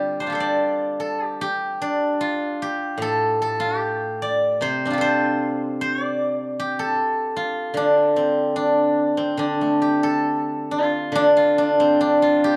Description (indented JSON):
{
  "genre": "chinese traditional, Chinese solo plucked strings",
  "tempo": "66-77 BPM",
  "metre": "4/4",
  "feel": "rubato",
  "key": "D yu mode",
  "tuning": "A4 = 440 Hz",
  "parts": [
    { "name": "steel-string zither", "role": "solo", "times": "0.0-12.6 s", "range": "A2 to D5", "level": "-21 LUFS", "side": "equal", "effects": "none" }
  ],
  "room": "moderate recital hall reverb, RT60 1.4 s",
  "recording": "dark, warm production",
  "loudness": "-21 LUFS",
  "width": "mono",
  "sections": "0.0-11.1 A section; 11.1-12.6 B section",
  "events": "none",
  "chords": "none"
}